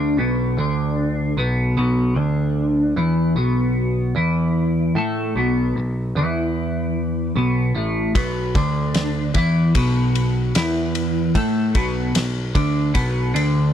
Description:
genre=psychedelic rock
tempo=75 BPM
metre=4/4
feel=straight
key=B minor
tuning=A4 = 440 Hz
part: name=twelve-string electric guitar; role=riff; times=0.0-13.7 s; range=A2 to A3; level=-19 LUFS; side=equal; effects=phaser, double-tracked left and right
part: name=picked electric bass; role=bass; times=0.0-13.7 s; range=A1 to A2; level=-25 LUFS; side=equal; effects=none
part: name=damped 70s drum kit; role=drums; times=8.2-13.5 s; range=kick drum, ride cymbal, snare drum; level=-24 LUFS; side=equal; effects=none
room=little or no reverb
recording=none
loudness=-18 LUFS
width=side -9 dB against mid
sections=0.0-13.7 A section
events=none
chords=0.0 Bm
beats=0.18 0.98 | 1.78 2.57 3.37 4.17 | 4.97 5.77 6.56 7.36 | 8.16 8.96 9.76 10.56 | 11.36 12.16 12.96

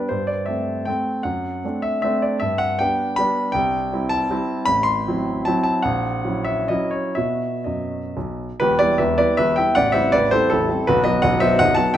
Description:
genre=classical, romantic triple-time dance for piano with dotted rhythms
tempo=119-183 BPM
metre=3/4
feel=rubato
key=G major, E minor from 3.5 s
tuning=A4 = 436 Hz
part: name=warm grand piano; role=solo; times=0.0-12.0 s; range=A0 to C6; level=-18 LUFS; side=equal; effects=none
room=moderate recital hall reverb, RT60 1.6 s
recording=close, detailed microphones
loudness=-18 LUFS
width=side -11 dB against mid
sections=0.0-8.6 A section; 8.6-12.0 B section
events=none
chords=0.1 Am7/G; 1.3 D7/F#; 2.4 G; 3.5 C; 4.7 F#m7b5/A; 5.8 F#7/A#; 7.2 B; 8.6 Em; 9.8 Am7; 10.9 B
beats=| 0.10 0.48 0.87 | 1.25 1.63 2.03 | 2.40 2.79 3.18 | 3.54 3.92 4.31 | 4.68 5.08 5.47 | 5.85 6.25 6.69 | 7.17 7.67 8.15 | 8.61 9.00 9.38 | 9.76 10.14 10.51 | 10.87 11.24 11.61 | 11.95

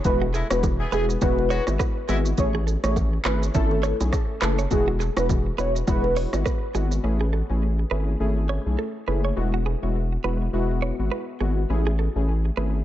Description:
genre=afrobeats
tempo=103 BPM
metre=4/4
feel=swing 58% on 16ths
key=E major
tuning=A4 = 440 Hz
part: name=warm analog keys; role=accompaniment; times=0.0-12.8 s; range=G#3 to A4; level=-28 LUFS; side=left 3 dB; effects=chorus, tape echo
part: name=round analog bass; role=bass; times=0.0-12.8 s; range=E1 to B1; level=-24 LUFS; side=equal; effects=none
part: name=afro-pop drum kit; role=drums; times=0.0-7.0 s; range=handclaps, hi-hat, kick drum, rim click, shaker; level=-26 LUFS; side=equal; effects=none
part: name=congas and bongos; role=percussion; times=0.0-6.6 s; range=none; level=-32 LUFS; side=right 5 dB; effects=none
part: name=warm velvety synth lead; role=melody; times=0.1-6.3 s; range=G#4 to C#5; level=-28 LUFS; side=right 1 dB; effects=chorus, tape echo
part: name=direct-recorded clean electric guitar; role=riff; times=0.2-12.7 s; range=F#4 to C#5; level=-33 LUFS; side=right 8 dB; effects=tape echo
part: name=clear horn section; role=second line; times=0.3-2.2 s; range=G#3 to G#4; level=-34 LUFS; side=left 3 dB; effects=none
room=digital ambience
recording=echo-heavy mix, nothing above 8.0 kHz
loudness=-21 LUFS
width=side -12 dB against mid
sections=0.0-7.0 A section; 7.0-12.8 B section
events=none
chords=0.0 Eadd9; 2.4 Amaj7; 4.7 Eadd9; 7.0 Amaj7; 9.4 Eadd9; 11.7 Amaj7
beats=| 0.05 0.63 1.21 1.80 | 2.38 2.96 3.54 4.13 | 4.71 5.29 5.87 6.46 | 7.04 7.62 8.20 8.79 | 9.37 9.95 10.53 11.12 | 11.70 12.28

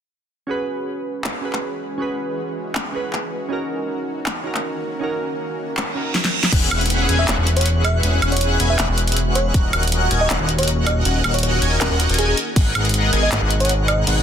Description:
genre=future bass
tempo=159 BPM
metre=4/4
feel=half-time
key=E lydian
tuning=A4 = 440 Hz
part: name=glassy digital keys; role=accompaniment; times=0.5-6.4 s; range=C#4 to B4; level=-26 LUFS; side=right 2 dB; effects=chorus, vintage 12-bit sampler grit, sidechain pumping, ping-pong delay
part: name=shimmering ambient pad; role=sustained chords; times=1.1-14.2 s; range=B2 to A#4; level=-32 LUFS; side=equal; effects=chorus, built-in reverb, sidechain pumping
part: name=pop drum kit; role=drums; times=1.2-14.2 s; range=crash cymbal, handclaps, hi-hat, snare drum, woodblock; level=-22 LUFS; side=equal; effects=soft clipping on snare
part: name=reverse cymbal and downlifter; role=sound effects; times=5.9-9.5 s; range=none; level=-27 LUFS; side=right 2 dB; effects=none
part: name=airy dreamy lead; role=arpeggios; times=6.5-14.2 s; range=F#6 to G#6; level=-27 LUFS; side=left 1 dB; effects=chorus, sidechain pumping, ping-pong delay
part: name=soft supersaw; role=riff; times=6.5-14.2 s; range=B3 to G#5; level=-23 LUFS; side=equal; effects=phaser, analog chorus, sidechain pumping
part: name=fat analog bass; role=bass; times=6.5-14.2 s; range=D#1 to G#1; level=-19 LUFS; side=equal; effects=sidechain pumping
part: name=electronic kick drum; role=drums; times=6.5-6.6, 9.5-9.6, 12.6 s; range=none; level=-16 LUFS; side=equal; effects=none
part: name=bell-like FM electric piano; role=melody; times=7.2-14.0 s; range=G#4 to E5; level=-25 LUFS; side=right 1 dB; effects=chorus, sidechain pumping, dub echo
room=light reverb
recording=dense, heavily limited modern master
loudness=-17 LUFS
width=side -9 dB against mid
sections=0.5-6.5 A section; 6.5-14.2 B section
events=reverse cymbal 5.9-6.5; drum fill 6.1-6.5; drop 6.5-14.2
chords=0.5 E69; 3.5 D#m7; 6.3 E69; 9.5 D#m7; 12.4 G#m9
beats=| 0.49 0.86 1.24 1.62 | 2.00 2.37 2.75 3.13 | 3.51 3.88 4.26 4.64 | 5.01 5.39 5.77 6.15 | 6.53 6.90 7.28 7.66 | 8.03 8.41 8.79 9.17 | 9.54 9.92 10.30 10.68 | 11.05 11.43 11.81 12.19 | 12.56 12.94 13.32 13.70 | 14.07

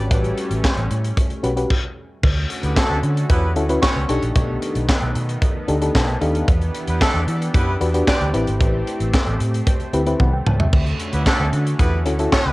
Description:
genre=early-eighties boogie funk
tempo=113 BPM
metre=4/4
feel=straight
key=D major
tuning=A4 = 437 Hz
part: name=FM electric piano with tremolo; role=accompaniment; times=0.0-12.4 s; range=C4 to A5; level=-23 LUFS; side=left 2 dB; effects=cassette tape
part: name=lush unison pad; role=sustained chords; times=0.0-12.5 s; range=D3 to G4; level=-29 LUFS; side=right 1 dB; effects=chorus, cassette tape
part: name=vintage muted fingered electric bass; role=bass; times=0.0-12.5 s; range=G#1 to E3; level=-21 LUFS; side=equal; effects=none
part: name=tight funk drum kit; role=drums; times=0.1-12.4 s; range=crash cymbal, handclaps, hi-hat, kick drum, snare drum, toms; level=-19 LUFS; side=equal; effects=none
part: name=clear horn section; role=second line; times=2.6-12.5 s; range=A3 to D5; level=-25 LUFS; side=right 1 dB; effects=cassette tape, tape echo
room=light reverb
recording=home recording on cassette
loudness=-17 LUFS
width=side -20 dB against mid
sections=0.0-2.2 A section; 2.2-12.5 A section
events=stop 1.7-2.2; FM electric piano fill 5.7-6.5; drum fill 10.2-10.7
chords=0.0 A13; 2.2 Dmaj7; 4.1 B7alt; 6.5 Em7; 8.3 Am7; 10.7 Dmaj7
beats=| 0.11 0.64 1.17 1.70 | 2.23 2.76 3.29 3.83 | 4.36 4.89 5.42 5.95 | 6.48 7.01 7.54 8.07 | 8.61 9.14 9.67 10.20 | 10.73 11.26 11.79 12.32

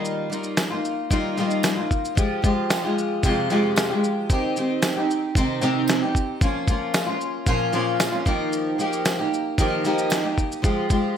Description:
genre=acoustic pop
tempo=113 BPM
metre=4/4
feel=straight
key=F minor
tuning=A4 = 438 Hz
part: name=fingerpicked steel-string acoustic guitar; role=accompaniment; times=0.0-11.2 s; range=F2 to G4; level=-22 LUFS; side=equal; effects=lush chorus
part: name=dusty soul sampler-style drum kit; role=drums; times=0.0-11.0 s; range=kick drum, shaker, snare drum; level=-23 LUFS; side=equal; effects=gated reverb
part: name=tambourine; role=percussion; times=0.6-10.2 s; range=none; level=-35 LUFS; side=right 5 dB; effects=none
room=light reverb, small room ambience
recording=bright 1980s-style digital production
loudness=-20 LUFS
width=side -8 dB against mid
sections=0.0-2.2 A section; 2.2-11.2 A section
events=none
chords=0.0 Ebadd9; 2.2 Fmadd9; 4.3 Cm; 6.4 Bbm; 8.3 Ebadd9; 10.6 Fmadd9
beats=| 0.05 0.58 1.11 1.64 | 2.17 2.70 3.23 3.76 | 4.29 4.82 5.35 5.88 | 6.41 6.94 7.47 8.00 | 8.53 9.06 9.59 10.12 | 10.64 11.17

